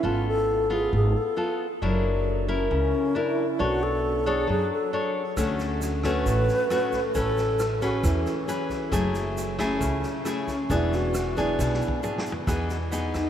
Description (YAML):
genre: bossa nova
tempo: 135 BPM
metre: 4/4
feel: straight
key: unclear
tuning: A4 = 440 Hz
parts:
  - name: mellow wooden-headed alto flute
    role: melody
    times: 0.0-13.3 s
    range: C#4 to B4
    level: -28 LUFS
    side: right 1 dB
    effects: none
  - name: nylon-string guitar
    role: accompaniment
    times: 0.0-13.3 s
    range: A2 to C#5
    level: -27 LUFS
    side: left 2 dB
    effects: none
  - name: upright bass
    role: bass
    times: 0.0-13.3 s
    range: E1 to F#2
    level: -28 LUFS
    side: equal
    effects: none
  - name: swinging big-band drum kit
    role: drums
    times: 5.4-13.2 s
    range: kick drum, rim click, snare drum, toms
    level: -33 LUFS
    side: equal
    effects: none
  - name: tube shaker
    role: percussion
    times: 5.4-13.3 s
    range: none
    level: -43 LUFS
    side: right 7 dB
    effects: none
room: moderate cathedral reverb, RT60 6.0 s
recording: in a vast, echoing space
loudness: -23 LUFS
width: side -10 dB against mid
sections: 0.0-12.5 A section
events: drum fill 11.6-12.5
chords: 0.0 G#m6; 1.8 F#7b13; 3.6 Bm9; 5.4 Dmaj7; 7.2 Amaj9; 8.9 F#m9; 10.7 E7; 12.5 Emaj7